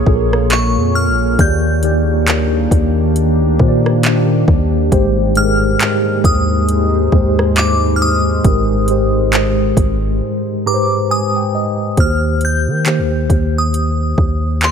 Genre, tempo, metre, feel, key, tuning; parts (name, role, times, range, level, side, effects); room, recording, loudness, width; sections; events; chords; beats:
contemporary R&B; 68 BPM; 4/4; swing 58% on 16ths; Eb major; A4 = 440 Hz
glassy synth bell; melody; 0.0-14.7 s; C6 to G6; -21 LUFS; left 1 dB; chorus, ping-pong delay
mellow tine electric piano; accompaniment; 0.0-14.7 s; Ab2 to Bb5; -17 LUFS; equal; medium stereo tremolo
deep dark ambient pad; sustained chords; 0.0-11.9 s; Eb3 to Db5; -19 LUFS; left 1 dB; chorus, built-in reverb
long sustained 808-style bass; bass; 0.0-14.7 s; Ab1 to Eb3; -17 LUFS; equal
smooth R&B drum kit; drums; 0.1-14.7 s; handclaps, hi-hat, kick drum, rim click; -16 LUFS; equal; overdrive
digital ambience; -12 LUFS; side -7 dB against mid
0.0-12.0 A section; 12.0-14.7 B section
break 10.2-12.0; tine electric piano fill 10.2-12.0
0.0 Bbm7; 1.4 Ebmaj7; 4.9 Abmaj7; 12.0 Eb6
0.50 | 1.39 2.27 3.15 4.03 | 4.92 5.80 6.68 7.56 | 8.45 9.33 10.21 11.09 | 11.97 12.86 13.74 14.62